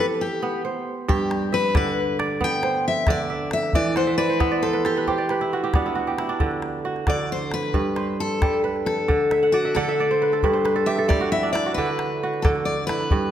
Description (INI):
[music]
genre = west african traditional, West African string and xylophone music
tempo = 90 BPM (dotted quarters)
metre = 12/8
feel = straight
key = unclear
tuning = A4 = 440 Hz
[part]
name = picked steel-string acoustic guitar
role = melody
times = 0.0-13.3 s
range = F#4 to G5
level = -23 LUFS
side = left 3 dB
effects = none
[part]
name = kora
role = arpeggios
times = 0.0-13.3 s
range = G2 to F#5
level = -23 LUFS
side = right 4 dB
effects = none
[part]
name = calabash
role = percussion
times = 1.1-13.2 s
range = none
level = -24 LUFS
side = left 1 dB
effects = none
[sound]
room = wet recital hall reverb, RT60 1.9 s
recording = none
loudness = -20 LUFS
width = side -10 dB against mid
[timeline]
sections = 0.0-6.4 A section; 6.4-13.3 B section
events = steel-string acoustic guitar solo 0.0-6.4; kora fill 4.0-6.4, 9.3-11.8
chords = 0.0 Em; 1.1 G; 3.7 Em; 6.4 D; 7.7 G; 9.1 D5; 10.4 N.C.; 11.8 D